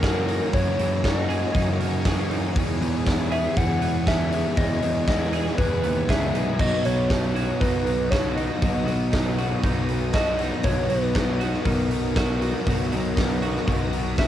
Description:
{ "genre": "rock, shoegaze and dream pop", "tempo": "119 BPM", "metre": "4/4", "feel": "straight", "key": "unclear", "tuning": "A4 = 440 Hz", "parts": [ { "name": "soft struck synth lead", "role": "melody", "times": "0.0-14.3 s", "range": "A#4 to F#5", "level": "-28 LUFS", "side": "equal", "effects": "chorus, cassette tape, tape echo" }, { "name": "string machine, full ensemble", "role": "sustained chords", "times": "0.0-14.3 s", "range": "B3 to D#6", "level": "-35 LUFS", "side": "equal", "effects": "ensemble chorus" }, { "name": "twelve-string electric guitar", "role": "arpeggios", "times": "0.0-14.3 s", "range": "E3 to G#4", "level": "-35 LUFS", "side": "right 10 dB", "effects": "wide subtle chorus, tape echo" }, { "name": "crunchy overdriven guitar", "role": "riff", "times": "0.0-14.3 s", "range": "F#2 to F#4", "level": "-31 LUFS", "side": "right 9 dB", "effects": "reverse reverb" }, { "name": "overdriven semi-hollow guitar", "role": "riff", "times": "0.0-14.3 s", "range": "E2 to G#4", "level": "-29 LUFS", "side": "left 9 dB", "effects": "wide subtle chorus" }, { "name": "fuzz picked electric bass", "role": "bass", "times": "0.0-14.3 s", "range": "B1 to F#2", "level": "-27 LUFS", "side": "equal", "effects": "overdrive" }, { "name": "huge arena drum kit", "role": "drums", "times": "0.0-14.3 s", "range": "crash cymbal, hi-hat, kick drum, snare drum", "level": "-26 LUFS", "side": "equal", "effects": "cassette tape" } ], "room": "little or no reverb", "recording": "home recording on cassette", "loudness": "-21 LUFS", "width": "side -11 dB against mid", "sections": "0.0-14.3 A section", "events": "none", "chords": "0.0 F#13; 2.6 Emaj7; 6.6 Bmaj7", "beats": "0.03 | 0.53 1.04 1.54 2.05 | 2.55 3.06 3.56 4.07 | 4.57 5.08 5.58 6.09 | 6.60 7.10 7.61 8.12 | 8.62 9.13 9.63 10.14 | 10.64 11.15 11.66 12.16 | 12.67 13.17 13.68 14.18" }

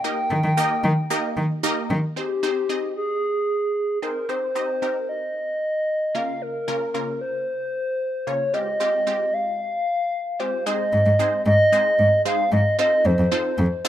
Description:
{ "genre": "dance-pop", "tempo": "113 BPM", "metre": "4/4", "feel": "straight", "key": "Ab major", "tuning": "A4 = 438 Hz", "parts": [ { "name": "hollow clarinet-like synth lead", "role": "melody", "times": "0.0-13.9 s", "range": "G4 to G5", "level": "-21 LUFS", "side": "equal", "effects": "chorus, plate reverb, tape echo" }, { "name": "wide unison pluck", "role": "accompaniment", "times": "0.0-13.9 s", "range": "Db3 to Eb5", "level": "-28 LUFS", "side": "right 1 dB", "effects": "phaser, plate reverb" }, { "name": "dark cello", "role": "bass", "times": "0.3-2.0, 10.9-13.7 s", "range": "F2 to Eb3", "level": "-21 LUFS", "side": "equal", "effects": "none" } ], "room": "moderate studio reverb, RT60 0.6 s", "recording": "rough home demo mix", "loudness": "-20 LUFS", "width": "side -11 dB against mid", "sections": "0.0-2.2 A section; 2.2-10.7 B section; 10.7-13.9 A section", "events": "drop 0.0-2.2, 10.7-13.9", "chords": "0.0 Eb; 2.2 Ab; 4.3 Cm; 6.2 Bbm/Db; 8.5 Fmadd9; 10.7 Ab; 12.8 F7", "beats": "| 0.04 0.57 1.10 1.64 | 2.17 2.70 3.23 3.76 | 4.29 4.82 5.35 5.88 | 6.42 6.95 7.48 8.01 | 8.54 9.07 9.60 10.13 | 10.66 11.19 11.72 12.26 | 12.79 13.32 13.85" }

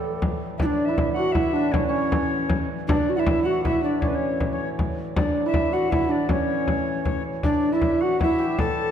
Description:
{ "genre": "medieval dance", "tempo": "158 BPM", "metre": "3/4", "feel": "straight", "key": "A mixolydian", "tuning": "A4 = 439 Hz", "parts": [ { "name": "mellow hollow tenor recorder", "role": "melody", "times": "0.0-8.9 s", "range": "C#4 to A4", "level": "-24 LUFS", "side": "equal", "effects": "none" }, { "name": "hammered dulcimer", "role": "second line", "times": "0.0-8.9 s", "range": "C#4 to A4", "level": "-28 LUFS", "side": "right 5 dB", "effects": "none" }, { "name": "pedal harmonium", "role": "drone", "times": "0.0-8.9 s", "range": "A2 to E3", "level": "-33 LUFS", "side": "right 1 dB", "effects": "none" }, { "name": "frame drum", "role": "percussion", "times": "0.2-8.8 s", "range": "none", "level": "-26 LUFS", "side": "left 1 dB", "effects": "none" }, { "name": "breathy bright alto recorder", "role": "second line", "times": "0.6-8.9 s", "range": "B4 to A5", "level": "-30 LUFS", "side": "left 5 dB", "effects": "none" } ], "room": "moderate concert hall reverb, RT60 1.7 s", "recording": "none", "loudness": "-20 LUFS", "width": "side -9 dB against mid", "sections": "0.6-8.9 A section", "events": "none", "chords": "none", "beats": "0.21 | 0.59 0.97 1.35 | 1.73 2.11 2.49 | 2.88 3.26 3.64 | 4.02 4.40 4.78 | 5.16 5.54 5.92 | 6.30 6.68 7.06 | 7.44 7.83 8.21 | 8.59" }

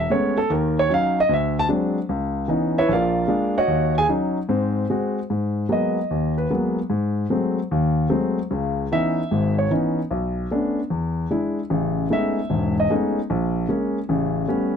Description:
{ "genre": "solo jazz", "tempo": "150 BPM", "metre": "4/4", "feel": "swing 67% on 8ths", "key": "G# minor from 5.3 s", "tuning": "A4 = 438 Hz", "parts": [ { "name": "warm grand piano", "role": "solo", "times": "0.0-14.8 s", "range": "E1 to A5", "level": "-20 LUFS", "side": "equal", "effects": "none" } ], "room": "little or no reverb", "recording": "close, detailed microphones", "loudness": "-20 LUFS", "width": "side -7 dB against mid", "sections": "0.0-5.3 A section; 5.3-14.8 A section", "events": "grand piano solo 0.0-5.3, 5.3-14.8", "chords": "0.5 D#m7; 1.3 D7#11; 2.1 C#m9; 2.9 A#7; 3.7 D#m7; 4.5 G#7; 5.3 G#m9; 6.9 G#7b9; 8.5 C#m9; 10.1 Bm9; 10.9 E7; 11.7 Amaj9#11; 13.3 A#m7; 14.1 A9", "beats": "0.10 | 0.49 0.90 1.29 1.70 | 2.10 2.50 2.90 3.29 | 3.69 4.09 4.50 4.89 | 5.29 5.70 6.10 6.50 | 6.90 7.30 7.70 8.10 | 8.50 8.90 9.30 9.70 | 10.10 10.50 10.90 11.30 | 11.70 12.10 12.50 12.90 | 13.30 13.70 14.10 14.50" }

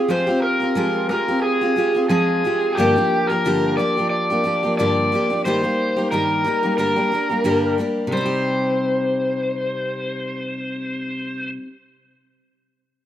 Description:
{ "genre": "pop", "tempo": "90 BPM", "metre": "4/4", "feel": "swing 55% on 16ths", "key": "C minor", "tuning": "A4 = 440 Hz", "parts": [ { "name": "overdriven slide guitar", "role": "melody", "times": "0.0-11.5 s", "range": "G4 to D5", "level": "-21 LUFS", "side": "equal", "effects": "none" }, { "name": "picked steel-string acoustic guitar", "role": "accompaniment", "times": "0.0-11.8 s", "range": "G2 to G4", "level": "-21 LUFS", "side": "left 1 dB", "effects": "none" } ], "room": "light reverb", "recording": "rough home demo mix", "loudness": "-18 LUFS", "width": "side -11 dB against mid", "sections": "0.0-8.1 A section; 8.1-10.8 B section", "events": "none", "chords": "0.0 Fmadd9; 2.8 Gm7; 5.4 Eb/G; 6.8 Gm; 8.1 Cm", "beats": "| 0.10 0.77 1.43 2.10 | 2.77 3.44 4.11 4.78 | 5.45 6.12 6.79 7.46 | 8.12 8.79 9.46 10.13" }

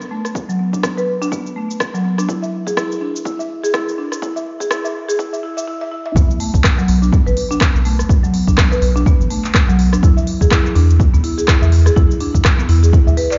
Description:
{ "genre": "afro house", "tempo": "124 BPM", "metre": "4/4", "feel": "swing 58% on 16ths", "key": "B dorian", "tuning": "A4 = 440 Hz", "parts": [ { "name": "deep house drum kit", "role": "drums", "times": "0.0-13.4 s", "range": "handclaps, hi-hat, rim click, shaker, toms", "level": "-24 LUFS", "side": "equal", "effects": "high-pass filter on perc, high-pass filter on hats, high-pass filter on snare, high-pass filter on toms, high-pass filter on room" }, { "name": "buzzing marimba with medium mallets", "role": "arpeggios", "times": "0.1-13.4 s", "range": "F#3 to E5", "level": "-22 LUFS", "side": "equal", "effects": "sidechain pumping, low-pass filter, tape echo" }, { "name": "electronic kick drum", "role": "drums", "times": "0.4-13.0 s", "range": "none", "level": "-17 LUFS", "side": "equal", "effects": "high-pass filter on kick, high-pass filter on room" }, { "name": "warm sub bass", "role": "bass", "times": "6.2-13.1 s", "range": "A1 to E2", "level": "-16 LUFS", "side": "equal", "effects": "sidechain pumping" } ], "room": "light reverb", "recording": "played on a big sound system in a bare room, large studio reverb, high-pass filter, nothing above 7.5 kHz", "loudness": "-16 LUFS", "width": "mono", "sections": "0.0-6.2 A section; 6.2-13.4 B section", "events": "build-up 0.0-6.2; break 5.7-6.2; drum fill 5.7-6.2; drop 6.2-13.4", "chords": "0.0 Bm7; 2.3 N.C.; 6.2 Bm7; 10.0 E7(no3)", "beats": "| 0.35 0.83 1.32 1.80 | 2.29 2.77 3.25 3.74 | 4.22 4.71 5.19 5.67 | 6.16 6.64 7.13 7.61 | 8.09 8.58 9.06 9.54 | 10.03 10.51 11.00 11.48 | 11.96 12.45 12.93" }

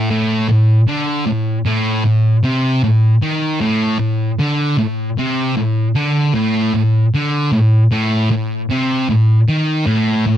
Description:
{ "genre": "rock", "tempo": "77 BPM", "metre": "4/4", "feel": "straight", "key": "unclear", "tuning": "A4 = 440 Hz", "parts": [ { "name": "thick fuzz guitar", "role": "solo", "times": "0.0-10.4 s", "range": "A2 to D#3", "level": "-13 LUFS", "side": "equal", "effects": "distortion" } ], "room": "light reverb", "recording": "dry, close 1970s-style studio recording", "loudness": "-13 LUFS", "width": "side -11 dB against mid", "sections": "0.1-10.4 A section", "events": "none", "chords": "none", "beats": "| 0.11 0.88 1.66 2.44 | 3.22 4.00 4.78 5.56 | 6.34 7.12 7.90 8.69 | 9.47 10.26" }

